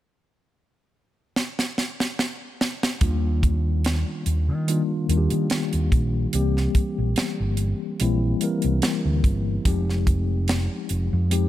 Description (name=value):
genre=lush 1970s-style soul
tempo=72 BPM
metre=4/4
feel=swing 54% on 16ths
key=Eb major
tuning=A4 = 444 Hz
part: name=tight funk drum kit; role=drums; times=1.4-11.5 s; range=hi-hat, kick drum, snare drum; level=-24 LUFS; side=right 1 dB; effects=none
part: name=mellow tine electric piano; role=accompaniment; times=3.0-11.5 s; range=Eb3 to Bb4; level=-26 LUFS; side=left 3 dB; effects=medium stereo tremolo
part: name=fingered electric bass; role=bass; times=3.0-11.4 s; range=F1 to Eb3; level=-22 LUFS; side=equal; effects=none
room=small room ambience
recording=none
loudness=-21 LUFS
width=side -13 dB against mid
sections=0.0-3.0 A section; 3.0-11.5 B section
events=drum fill 1.4-3.0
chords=0.0 N.C.; 3.0 Ebmaj9; 6.3 C7; 9.7 Fm9